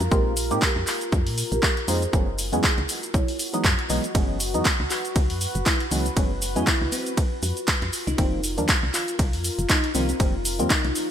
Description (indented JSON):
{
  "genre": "deep house",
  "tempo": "119 BPM",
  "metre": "4/4",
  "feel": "swing 56% on 16ths",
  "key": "unclear",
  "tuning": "A4 = 440 Hz",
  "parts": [
    { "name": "woody FM bass", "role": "bass", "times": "0.0-10.9 s", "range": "F1 to Bb2", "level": "-28 LUFS", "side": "equal", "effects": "sidechain pumping" },
    { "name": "punchy analog drum machine", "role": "drums", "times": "0.0-11.1 s", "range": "cabasa, handclaps, hi-hat, ride cymbal", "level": "-26 LUFS", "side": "equal", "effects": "none" },
    { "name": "deep dark ambient pad", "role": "texture", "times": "0.0-11.1 s", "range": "F4 to Cb5", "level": "-33 LUFS", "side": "left 1 dB", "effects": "chorus, built-in reverb, sidechain pumping" },
    { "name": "marimba with soft mallets", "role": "melody", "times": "0.1-3.3 s", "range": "Fb4 to Db5", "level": "-31 LUFS", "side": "right 3 dB", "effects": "vintage 12-bit sampler grit, digital delay" },
    { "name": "percussive organ stab", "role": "stabs", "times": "0.1-10.7 s", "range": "Eb3 to G4", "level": "-28 LUFS", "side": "equal", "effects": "analog chorus, sidechain pumping, digital delay" },
    { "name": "electronic kick drum", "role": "drums", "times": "0.1-10.8 s", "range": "none", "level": "-23 LUFS", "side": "equal", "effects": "none" },
    { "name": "bell-like FM electric piano", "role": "melody", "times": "4.9-11.1 s", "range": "C4 to Gb4", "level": "-32 LUFS", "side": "left 1 dB", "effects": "chorus, ping-pong delay" }
  ],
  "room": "light reverb",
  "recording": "bright 1980s-style digital production",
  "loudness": "-21 LUFS",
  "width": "side -9 dB against mid",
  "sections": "0.0-11.1 A section",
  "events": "none",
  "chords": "0.0 Bb9sus4; 2.1 Gb9sus4; 6.9 F9sus4",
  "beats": "| 0.12 0.62 1.12 1.63 | 2.13 2.64 3.14 3.65 | 4.15 4.65 5.16 5.66 | 6.17 6.67 7.17 7.68 | 8.18 8.69 9.19 9.70 | 10.20 10.70"
}